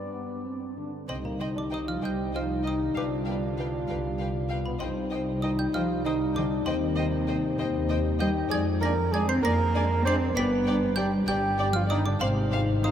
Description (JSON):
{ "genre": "cinematic, playful, whimsical film cue", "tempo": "65 BPM (dotted quarters)", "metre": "6/8", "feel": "straight", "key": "C minor", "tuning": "A4 = 440 Hz", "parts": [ { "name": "mellow cor anglais", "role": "second line", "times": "0.0-0.8 s", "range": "D5", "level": "-51 LUFS", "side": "left 2 dB", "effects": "none" }, { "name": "warm clarinet", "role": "second line", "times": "0.0-0.8 s", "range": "B4", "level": "-50 LUFS", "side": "equal", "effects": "none" }, { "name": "mellow bassoon", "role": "accompaniment", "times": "0.0-12.9 s", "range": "G3 to C5", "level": "-32 LUFS", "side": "right 2 dB", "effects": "none" }, { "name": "concert harp", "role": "arpeggios", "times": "0.0-12.9 s", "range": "F2 to D5", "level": "-32 LUFS", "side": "left 4 dB", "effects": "none" }, { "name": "warm French horn section", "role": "sustained chords", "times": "0.1-12.9 s", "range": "G3 to F4", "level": "-33 LUFS", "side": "equal", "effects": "none" }, { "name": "trough xylophone with plastic mallets", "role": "melody", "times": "1.1-12.9 s", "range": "Bb5 to C7", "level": "-38 LUFS", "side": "right 2 dB", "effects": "none" }, { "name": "warm chamber violin section", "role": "melody", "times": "1.1-12.9 s", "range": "F5 to Ab5", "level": "-43 LUFS", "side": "left 1 dB", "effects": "none" }, { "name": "warm chamber violin section", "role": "second line", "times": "1.1-12.9 s", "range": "D5 to F5", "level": "-38 LUFS", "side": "equal", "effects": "none" }, { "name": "warm chamber viola section", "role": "accompaniment", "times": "1.1-12.9 s", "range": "B4 to D5", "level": "-39 LUFS", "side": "left 1 dB", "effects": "none" }, { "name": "dark chamber cello section", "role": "bass", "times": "1.1-12.9 s", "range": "Bb2 to C4", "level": "-32 LUFS", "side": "equal", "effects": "none" }, { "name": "warm chamber double bass section", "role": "bass", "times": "1.1-12.9 s", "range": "G1 to F2", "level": "-30 LUFS", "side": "equal", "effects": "none" } ], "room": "wet cathedral reverb, RT60 6.3 s", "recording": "in a vast, echoing space", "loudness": "-24 LUFS", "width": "side -9 dB against mid", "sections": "0.0-1.1 A section; 1.1-12.9 B section", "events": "none", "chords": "0.0 G; 1.1 Cm; 3.0 G7/C; 4.8 Cm; 6.7 Cm/Eb; 8.5 Dm7b5/F; 10.4 G; 12.2 Fm/Ab" }